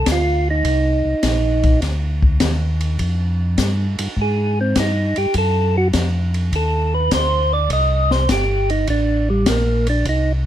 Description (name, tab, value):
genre	soul jazz organ trio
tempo	102 BPM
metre	4/4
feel	swing 69% on 8ths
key	C dorian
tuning	A4 = 441 Hz
part	percussive tonewheel organ	melody	0.0-10.3 s	G3 to Eb5	-19 LUFS	right 2 dB	slow rotary speaker
part	mellow tonewheel organ	bass	0.0-10.5 s	G1 to Ab2	-19 LUFS	equal	overdrive, chorus vibrato, slow rotary speaker
part	open jazz drum kit	drums	0.1-10.2 s	hi-hat, kick drum, ride cymbal, snare drum	-23 LUFS	left 2 dB	none
room	little or no reverb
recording	close, detailed microphones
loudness	-16 LUFS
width	side -11 dB against mid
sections	0.0-10.5 A section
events	tonewheel organ solo 0.0-10.5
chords	0.0 Cm7; 3.0 Fm; 5.4 D7b9; 7.7 Cm7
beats	0.06 | 0.65 1.24 1.83 2.42 | 3.00 3.59 4.18 4.77 | 5.36 5.95 6.53 7.12 | 7.71 8.30 8.89 9.48 | 10.06